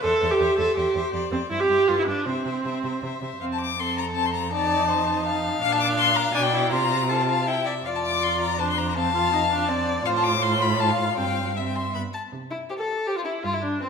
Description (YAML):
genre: quick classical-period movement for string quartet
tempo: 162 BPM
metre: 3/4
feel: straight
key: C major, F major from 3.4 s, C major from 10.1 s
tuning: A4 = 440 Hz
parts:
  - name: rich violin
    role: melody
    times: 0.0-13.9 s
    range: B4 to D6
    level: -25 LUFS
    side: left 7 dB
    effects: none
  - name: clear violin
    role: second line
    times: 0.0-13.9 s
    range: C4 to C6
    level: -29 LUFS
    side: left 3 dB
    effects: none
  - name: rich viola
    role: accompaniment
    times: 0.0-13.9 s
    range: B3 to A4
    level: -25 LUFS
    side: right 2 dB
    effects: none
  - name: rich cello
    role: bass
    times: 0.0-13.7 s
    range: E2 to C3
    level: -29 LUFS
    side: right 4 dB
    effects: none
room: wet recital hall reverb, RT60 1.6 s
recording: none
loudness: -21 LUFS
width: side -6 dB against mid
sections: 0.0-3.4 A section; 3.4-12.3 B section; 12.3-13.9 A section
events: none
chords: 0.0 C/E; 1.1 Dm7; 1.5 C; 1.9 G7; 2.3 C; 3.4 F; 4.5 F7; 5.6 Bb; 6.3 E7#9/B; 6.7 F/C; 7.5 C; 7.8 F5; 9.0 F; 10.1 F/A; 11.2 C/G; 11.9 N.C.; 12.3 C6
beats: | 0.04 0.41 0.77 | 1.14 1.51 1.88 | 2.27 2.65 3.03 | 3.41 3.79 4.16 | 4.53 4.89 5.25 | 5.62 5.98 6.35 | 6.72 7.09 7.47 | 7.85 8.22 8.59 | 8.96 9.33 9.69 | 10.05 10.42 10.79 | 11.17 11.56 11.95 | 12.32 12.70 13.07 | 13.44 13.81